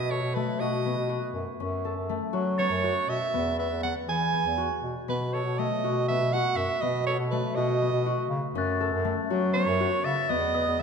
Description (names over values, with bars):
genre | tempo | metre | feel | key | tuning
contemporary instrumental, chamber music in an uneven meter | 242 BPM (eighths) | 7/8 | straight | unclear | A4 = 440 Hz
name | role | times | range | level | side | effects
breathy soprano saxophone | melody | 0.0-10.8 s | B4 to G#5 | -29 LUFS | right 6 dB | none
concert harp | arpeggios | 0.0-10.8 s | A3 to B4 | -31 LUFS | left 6 dB | none
warm bass clarinet | bass | 0.0-10.8 s | E2 to F#3 | -29 LUFS | equal | none
glockenspiel with rubber mallets | texture | 0.0-3.4, 6.6-10.8 s | D#6 to B6 | -36 LUFS | left 5 dB | none
room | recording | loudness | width
wet concert hall reverb, RT60 2.0 s | none | -25 LUFS | side -6 dB against mid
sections
0.0-10.8 A section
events
none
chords
0.0 B7; 1.6 F#m; 3.3 E; 5.1 F#m; 10.3 Emaj7(no3)